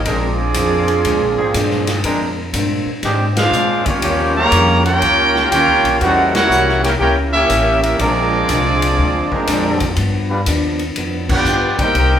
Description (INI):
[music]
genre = jazz, big band swing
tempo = 121 BPM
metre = 4/4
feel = swing 67% on 8ths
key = unclear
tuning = A4 = 442 Hz
[part]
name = upright bass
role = bass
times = 0.0-12.2 s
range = Ab1 to Bb2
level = -20 LUFS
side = equal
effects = none
[part]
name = warm trumpet section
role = melody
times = 0.1-12.2 s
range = Bb3 to Bb5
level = -16 LUFS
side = right 1 dB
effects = none
[part]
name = bright trombone section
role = second line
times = 0.1-12.2 s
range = Db3 to Ab4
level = -20 LUFS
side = right 2 dB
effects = none
[part]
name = picked steel-string acoustic guitar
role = accompaniment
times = 0.1-12.2 s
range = G2 to G4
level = -23 LUFS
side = left 2 dB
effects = none
[part]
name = bright trombone section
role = sustained chords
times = 0.1-11.9 s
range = F3 to B4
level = -23 LUFS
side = equal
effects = none
[part]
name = swinging big-band drum kit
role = drums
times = 0.1-12.1 s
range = crash cymbal, hi-hat, kick drum, ride cymbal, snare drum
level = -23 LUFS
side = left 1 dB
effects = none
[sound]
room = wet large studio reverb, RT60 1.2 s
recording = band playing live in one room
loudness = -13 LUFS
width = side -9 dB against mid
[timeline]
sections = 0.0-12.2 A section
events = band accent 3.3, 6.3, 11.2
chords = 0.1 Bb9; 4.0 Eb9; 6.0 Edim7; 8.0 Bb9; 10.0 G7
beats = | 0.06 0.55 1.05 1.54 | 2.04 2.54 3.04 3.53 | 4.03 4.52 5.02 5.52 | 6.01 6.51 7.00 7.50 | 7.99 8.49 8.98 9.47 | 9.97 10.46 10.96 11.45 | 11.95